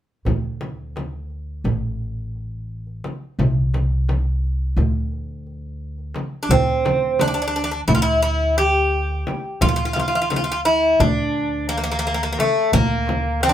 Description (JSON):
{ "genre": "Turkish makam ensemble", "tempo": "173 BPM (eighths)", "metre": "9/8", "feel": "straight", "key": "D makam ussak", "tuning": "A4 = 440 Hz", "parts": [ { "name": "upright bass", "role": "bass", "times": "0.3-13.5 s", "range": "A1 to D2", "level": "-24 LUFS", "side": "equal", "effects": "none" }, { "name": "darbuka", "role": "percussion", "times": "0.3-13.5 s", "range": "none", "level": "-28 LUFS", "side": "right 4 dB", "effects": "none" }, { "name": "frame drum", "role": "percussion", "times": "0.3-13.5 s", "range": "none", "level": "-24 LUFS", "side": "left 1 dB", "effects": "none" }, { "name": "Greek bouzouki", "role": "melody", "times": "6.4-13.5 s", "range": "A3 to G4", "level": "-19 LUFS", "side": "equal", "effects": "none" } ], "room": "light reverb", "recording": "band playing live in one room", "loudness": "-18 LUFS", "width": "side -10 dB against mid", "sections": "0.3-6.5 A section; 6.5-13.5 B section", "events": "none", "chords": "none" }